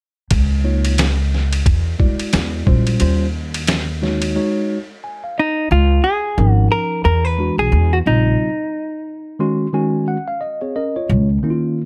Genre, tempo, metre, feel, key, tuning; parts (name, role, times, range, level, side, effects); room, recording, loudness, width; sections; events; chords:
hip hop, jazz-hop; 89 BPM; 4/4; swing 59% on 16ths; Db major; A4 = 439 Hz
upright bass; bass; 0.3-11.4 s; Ab1 to E2; -18 LUFS; equal
trip hop sampler-style drum kit; drums; 0.3-4.3 s; hi-hat, kick drum, ride cymbal, snare drum; -22 LUFS; equal
mellow tine electric piano; accompaniment; 0.6-11.9 s; Db3 to C6; -23 LUFS; equal
hollow-body jazz guitar; melody; 5.4-10.1 s; Eb4 to B4; -21 LUFS; equal
little or no reverb; -18 LUFS; mono
0.3-5.7 A section; 5.7-11.9 B section
break 4.4-5.7, 8.4-11.1; tine electric piano fill 4.7-5.7, 9.1-11.1
0.3 Db69; 1.7 E; 2.3 E9; 3.0 Eb13; 4.4 Ab7sus4; 5.7 Db69; 7.1 E; 7.7 E9; 8.4 Ab7sus4; 11.1 Db69